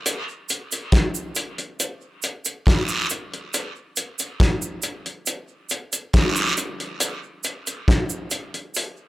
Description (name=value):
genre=reggae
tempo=69 BPM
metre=4/4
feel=straight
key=none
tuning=none
part: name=cloth-damped thuddy drum kit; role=drums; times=0.1-9.0 s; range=hi-hat, kick drum, snare drum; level=-21 LUFS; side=equal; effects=none
part: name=cabasa and guiro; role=percussion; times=0.1-9.0 s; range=none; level=-27 LUFS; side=right 3 dB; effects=tape echo
room=moderate spring reverb, RT60 2.3 s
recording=none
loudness=-22 LUFS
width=side -17 dB against mid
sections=0.0-9.1 A section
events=none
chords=none